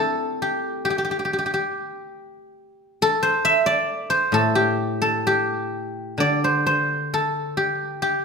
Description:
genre	chinese traditional, Chinese solo plucked strings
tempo	64-71 BPM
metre	2/4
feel	rubato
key	G zhi mode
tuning	A4 = 440 Hz
part	guzheng	solo	0.0-8.2 s	A2 to E5	-20 LUFS	equal	none
room	moderate recital hall reverb, RT60 1.5 s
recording	minimal, uncompressed stereo recording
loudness	-20 LUFS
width	side -5 dB against mid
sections	0.0-8.2 A section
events	none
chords	none

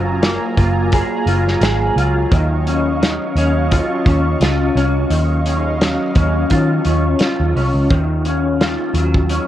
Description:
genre	indie pop, bedroom pop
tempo	86 BPM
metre	4/4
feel	swing 55% on 16ths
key	Eb minor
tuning	A4 = 440 Hz
part	electric guitar through a small old amp	accompaniment	0.0-9.5 s	Eb3 to Ab4	-18 LUFS	left 1 dB	ensemble chorus, warbly pitch drift
part	warm analog pad	sustained chords	0.0-7.9 s	Gb3 to Db6	-25 LUFS	right 3 dB	chorus
part	vintage muted picked electric bass	bass	0.0-9.4 s	Gb1 to Eb3	-17 LUFS	equal	none
part	loose indie drum kit	drums	0.2-9.5 s	hi-hat, kick drum, snare drum	-18 LUFS	equal	none
room	light reverb, small room ambience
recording	worn, warbling old tape, cassette tape, warbly pitch drift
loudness	-14 LUFS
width	side -12 dB against mid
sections	0.0-7.9 A section; 7.9-9.5 B section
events	none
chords	0.0 Gbmaj9; 2.3 Ebm9

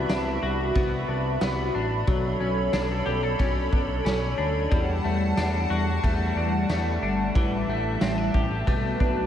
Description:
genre	dream pop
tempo	91 BPM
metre	4/4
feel	straight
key	B minor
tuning	A4 = 443 Hz
part	hollow soft pad	sustained chords	0.0-9.3 s	G3 to B5	-28 LUFS	equal	ensemble chorus
part	clean electric guitar	arpeggios	0.0-9.3 s	E3 to A4	-29 LUFS	left 3 dB	analog chorus, analog delay
part	chorused synth bass	bass	0.0-9.3 s	G1 to E2	-28 LUFS	equal	none
part	raw garage drum kit	drums	0.1-9.2 s	kick drum, ride cymbal, snare drum, tambourine	-28 LUFS	equal	none
room	moderate huge ambient reverb, RT60 8.4 s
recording	dreamy mix soaked in reverb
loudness	-22 LUFS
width	side -10 dB against mid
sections	0.0-9.3 A section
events	none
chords	0.0 Cmaj9#11; 2.1 Bm9; 4.7 Em11; 7.4 A7sus4; 8.7 Bm7

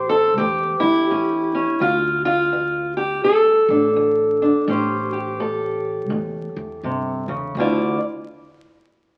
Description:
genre	acoustic country blues, solo or duo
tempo	84 BPM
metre	4/4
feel	swing 61% on 8ths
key	D minor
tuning	A4 = 437 Hz
part	fingerpicked steel-string acoustic guitar	melody	0.0-8.0 s	D2 to D5	-20 LUFS	equal	none
part	upright bass	bass	0.0-8.0 s	A1 to G2	-32 LUFS	equal	none
room	wet large studio reverb, RT60 1.4 s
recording	very old 78 rpm record, vinyl crackle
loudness	-20 LUFS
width	mono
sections	0.0-7.6 A section; 7.6-9.2 B section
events	none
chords	0.0 A7#9; 1.8 Dm; 4.7 A7#9; 7.6 Dmadd9

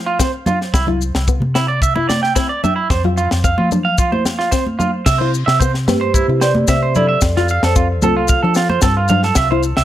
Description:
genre	highlife guitar band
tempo	111 BPM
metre	4/4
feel	straight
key	C major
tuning	A4 = 440 Hz
part	hollow-body short-scale fingered electric bass	bass	0.0-9.8 s	C2 to F3	-19 LUFS	equal	none
part	electric guitar through a small old amp	arpeggios	0.1-9.8 s	E4 to G5	-18 LUFS	right 4 dB	analog delay
part	fingerpicked plugged-in swing-style acoustic guitar	accompaniment	0.2-9.7 s	B3 to F4	-23 LUFS	left 9 dB	none
part	tight funk drum kit	drums	0.2-9.8 s	crash cymbal, kick drum, snare drum	-18 LUFS	left 1 dB	none
part	maracas	percussion	0.2-9.8 s	none	-26 LUFS	left 8 dB	none
part	congas	percussion	0.5-9.2 s	none	-21 LUFS	right 1 dB	none
part	marimba with medium mallets	melody	5.9-9.1 s	F4 to E5	-20 LUFS	equal	none
room	light reverb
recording	none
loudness	-13 LUFS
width	side -12 dB against mid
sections	0.0-5.1 A section; 5.1-9.8 B section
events	none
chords	0.0 F5; 0.7 Cadd9; 2.9 F5; 5.1 Cadd9; 7.2 F

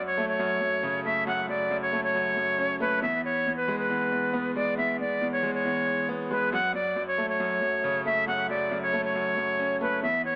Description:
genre	hip hop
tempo	137 BPM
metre	4/4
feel	half-time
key	F# minor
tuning	A4 = 440 Hz
part	bright reedy concert flute	melody	0.0-10.4 s	B4 to F#5	-28 LUFS	equal	low-pass filter
part	clear concert grand piano	accompaniment	0.0-10.4 s	E2 to C#4	-33 LUFS	equal	low-pass filter
room	light reverb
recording	vinyl crackle, AM radio sound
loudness	-27 LUFS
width	mono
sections	0.0-10.4 A section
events	none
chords	0.0 F#m; 3.0 E; 6.5 F#m

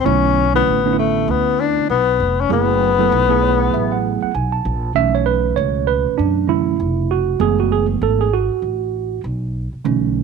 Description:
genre	hip hop, jazz-hop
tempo	98 BPM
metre	4/4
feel	swing 60% on 16ths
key	B minor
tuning	A4 = 441 Hz
part	mellow tenor saxophone	melody	0.0-4.3 s	A3 to D4	-16 LUFS	left 10 dB	none
part	mellow tine electric piano	accompaniment	0.0-10.2 s	B2 to A5	-18 LUFS	right 14 dB	medium stereo tremolo
part	upright bass	bass	0.0-10.2 s	E#1 to F#2	-21 LUFS	equal	none
room	light reverb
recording	1960s-style stereo with parts hard left and right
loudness	-15 LUFS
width	side -5 dB against mid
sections	0.0-5.0 A section; 5.0-10.2 B section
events	tine electric piano fill 3.1-5.0; tine electric piano solo 5.0-10.2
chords	0.1 Bm11; 2.5 F#m11; 5.0 Bm11; 7.4 F#m11

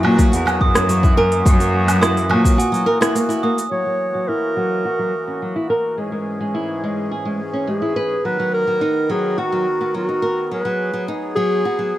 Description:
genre	folktronica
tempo	106 BPM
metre	4/4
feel	straight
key	unclear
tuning	A4 = 438 Hz
part	glockenspiel with soft plastic mallets	second line	0.0-3.6 s	G#5 to D#6	-24 LUFS	right 3 dB	vintage 12-bit sampler grit, digital delay
part	accordion	sustained chords	0.0-12.0 s	G#2 to A#4	-27 LUFS	left 1 dB	light tremolo tuning, low-pass filter
part	flamenco guitar	arpeggios	0.0-11.9 s	F#3 to B4	-22 LUFS	equal	low-pass filter, digital delay
part	bright cello	bass	0.0-2.5 s	E2 to A#2	-19 LUFS	left 1 dB	tube saturation
part	organic electronic drum kit	drums	0.0-11.9 s	hi-hat, rim click, shaker, woodblock	-21 LUFS	right 1 dB	overdrive, low-pass filter on perc, low-pass filter on hats, low-pass filter on snare, low-pass filter on room
part	electronic kick drum	drums	0.2-2.6 s	none	-15 LUFS	equal	overdrive
part	mellow clarinet	melody	3.7-12.0 s	F#4 to C#5	-20 LUFS	equal	digital delay
room	light reverb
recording	none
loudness	-16 LUFS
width	side -14 dB against mid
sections	0.0-3.7 A section; 3.7-12.0 B section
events	break 2.6-3.7; filter sweep on nylon-string guitar 3.7-12.0; filter sweep on accordion 3.7-12.0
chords	0.0 F#7; 6.0 E6/G#; 8.2 Bmaj7; 10.5 G#m7

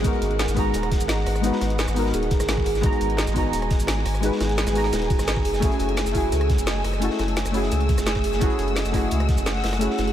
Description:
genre	liquid drum and bass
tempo	172 BPM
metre	4/4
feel	straight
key	unclear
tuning	A4 = 438 Hz
part	deep mellow chord stab	accompaniment	0.0-10.1 s	G#3 to A#5	-26 LUFS	left 2 dB	chorus, diffuse ambient delay
part	warm studio string section	sustained chords	0.0-10.1 s	A3 to E6	-33 LUFS	left 1 dB	sidechain pumping
part	kalimba	arpeggios	0.0-10.0 s	F#4 to G#5	-29 LUFS	right 4 dB	diffuse ambient delay
part	warm sub bass	bass	0.0-10.1 s	D#1 to C#2	-25 LUFS	equal	none
part	crunchy breakbeat drum kit	drums	0.0-10.1 s	hi-hat, snare drum	-34 LUFS	equal	high-pass filter on hats, high-pass filter on snare, high-pass filter on room
part	drum and bass drum kit	drums	0.0-10.1 s	hi-hat, rim click, shaker, snare drum	-30 LUFS	equal	overdrive
part	electronic kick drum	drums	0.0-9.4 s	none	-24 LUFS	equal	overdrive
room	moderate huge ambient reverb, RT60 4.2 s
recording	dreamy mix soaked in reverb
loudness	-20 LUFS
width	side -11 dB against mid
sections	0.0-10.1 A section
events	none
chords	0.0 G#m9; 5.6 F#m9

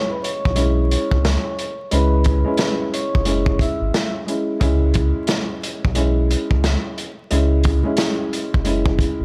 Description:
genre	hip hop, boom-bap hip-hop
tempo	89 BPM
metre	4/4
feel	swing 60% on 16ths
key	C# minor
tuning	A4 = 440 Hz
part	vibraphone with soft mallets	melody	0.0-4.1 s	B4 to E6	-29 LUFS	equal	high-pass filter, low-pass filter, analog delay
part	dark upright piano	accompaniment	0.0-9.2 s	G#3 to E4	-25 LUFS	equal	high-pass filter, low-pass filter
part	crunchy breakbeat drum kit	drums	0.2-9.2 s	hi-hat, kick drum, snare drum	-24 LUFS	equal	none
part	warm sub bass	bass	0.5-9.2 s	F#1 to C#2	-21 LUFS	equal	none
room	little or no reverb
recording	dry, gritty hardware recording, transformer saturation, vinyl crackle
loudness	-19 LUFS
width	mono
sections	0.0-9.2 A section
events	none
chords	0.0 C#m

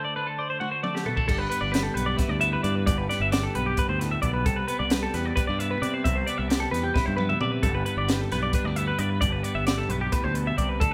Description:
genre	math rock and midwest emo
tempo	265 BPM (eighths)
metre	7/8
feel	straight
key	G major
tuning	A4 = 440 Hz
part	twelve-string electric guitar	accompaniment	0.0-10.9 s	G2 to C5	-34 LUFS	equal	vibrato effect
part	twelve-string electric guitar	arpeggios	0.0-10.9 s	G4 to F#5	-30 LUFS	equal	none
part	compact cocktail drum kit	drums	0.6-10.9 s	crash cymbal, hi-hat, kick drum, snare drum, toms	-30 LUFS	equal	none
part	growling fingered electric bass	bass	1.3-10.9 s	G1 to C3	-31 LUFS	equal	overdrive
room	moderate large studio reverb, RT60 1.1 s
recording	band playing live in one room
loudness	-26 LUFS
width	mono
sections	0.0-1.3 A section; 1.3-10.9 B section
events	break 0.0-1.3; drum fill 0.6-1.3, 6.9-7.6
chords	0.0 D7; 1.3 G6; 4.5 Cmaj7; 7.6 G6

